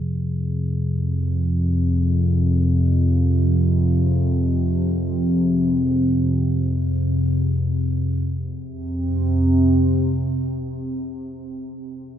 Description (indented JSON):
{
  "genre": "dark ambient drone",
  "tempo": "free time",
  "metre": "none",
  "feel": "none",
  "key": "unclear",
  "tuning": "A4 = 440 Hz",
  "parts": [
    { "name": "analog drone", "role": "drone", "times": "0.0-11.5 s", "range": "F2 to C3", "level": "-18 LUFS", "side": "equal", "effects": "chorus" },
    { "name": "bronze singing bowl", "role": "texture", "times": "0.0-8.3 s", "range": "Ab4", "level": "-49 LUFS", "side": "left 3 dB", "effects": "none" }
  ],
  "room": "wet huge ambient reverb, RT60 8.3 s",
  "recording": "dark, warm production",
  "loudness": "-18 LUFS",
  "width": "side -10 dB against mid",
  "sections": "0.0-8.3 A section; 8.3-12.2 B section",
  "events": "none",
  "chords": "0.0 Fm",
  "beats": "free time"
}